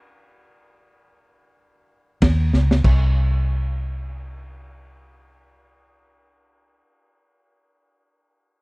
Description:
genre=straight-eighth soul blues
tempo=free time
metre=none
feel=none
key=unclear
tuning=A4 = 440 Hz
part: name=vintage muted fingered electric bass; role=bass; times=2.2-6.8 s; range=C2 to Eb2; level=-19 LUFS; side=equal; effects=none
part: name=crunchy breakbeat drum kit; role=drums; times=2.2-3.0 s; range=crash cymbal, kick drum, ride cymbal, snare drum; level=-20 LUFS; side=equal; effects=none
room=little or no reverb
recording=dry, close 1970s-style studio recording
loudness=-17 LUFS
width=side -32 dB against mid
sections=0.0-2.8 A section; 2.8-5.3 B section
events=stop 0.0-2.2; drum fill 2.5-2.8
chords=none

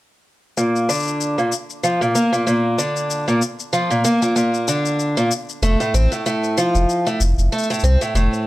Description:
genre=folktronica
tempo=95 BPM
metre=4/4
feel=swing 56% on 16ths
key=Bb major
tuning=A4 = 440 Hz
part: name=picked twelve-string acoustic guitar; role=arpeggios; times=0.6-8.5 s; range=A2 to C4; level=-18 LUFS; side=equal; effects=low-pass filter, digital delay
part: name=shaker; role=drums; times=0.6-8.4 s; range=none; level=-28 LUFS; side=left 7 dB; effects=studio reverb
part: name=warm sub bass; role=bass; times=5.6-8.3 s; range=F1 to C2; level=-16 LUFS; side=equal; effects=none
room=moderate small room reverb, RT60 0.5 s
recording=none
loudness=-16 LUFS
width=side -17 dB against mid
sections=0.6-8.5 A section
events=none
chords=0.6 Bb; 5.6 F

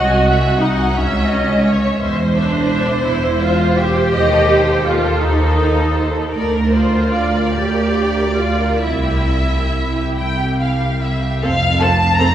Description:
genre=classical, slow romantic movement for string orchestra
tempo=43-59 BPM (dotted quarters)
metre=6/8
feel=rubato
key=F major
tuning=A4 = 440 Hz
part: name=rich symphonic violin section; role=melody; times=0.0-12.3 s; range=E4 to Bb5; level=-23 LUFS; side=left 1 dB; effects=none
part: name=clear symphonic violin section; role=second line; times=0.0-12.3 s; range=A4 to G5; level=-21 LUFS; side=left 1 dB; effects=none
part: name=clear symphonic viola section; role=accompaniment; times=0.0-12.3 s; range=C4 to A4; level=-19 LUFS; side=right 2 dB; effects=none
part: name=clear symphonic cello section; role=bass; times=0.0-12.3 s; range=B#1 to F2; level=-20 LUFS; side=right 2 dB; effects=none
part: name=rich symphonic double bass section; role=bass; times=0.0-12.3 s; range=E1 to Eb2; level=-20 LUFS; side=equal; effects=none
room=wet church reverb, RT60 3.5 s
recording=recorded in a church or concert hall, small room ambience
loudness=-14 LUFS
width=side -10 dB against mid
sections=0.0-11.4 A section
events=none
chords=0.0 G#7/B#; 1.0 C#m; 2.0 C/E; 4.1 F9/Eb; 6.3 Bb/D; 8.8 C; 11.4 F

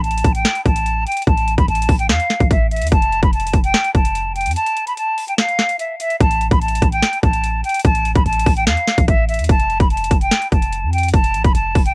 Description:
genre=hip hop, trap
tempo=146 BPM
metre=4/4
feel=half-time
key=unclear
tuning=A4 = 440 Hz
part: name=bright silver concert flute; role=melody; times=0.0-11.9 s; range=E5 to B5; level=-18 LUFS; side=equal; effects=low-pass filter, cassette tape, analog delay
part: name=warm 808-style bass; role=bass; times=0.0-11.9 s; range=F1 to F2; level=-20 LUFS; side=equal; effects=none
part: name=trap drum kit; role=drums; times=0.0-11.9 s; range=hi-hat, kick drum, snare drum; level=-16 LUFS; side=equal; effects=overdrive, cassette tape
room=little or no reverb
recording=home recording on cassette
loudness=-14 LUFS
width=side -25 dB against mid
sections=0.0-11.9 A section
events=break 4.6-6.2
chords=0.0 A5; 2.9 F; 6.2 A5; 9.5 F

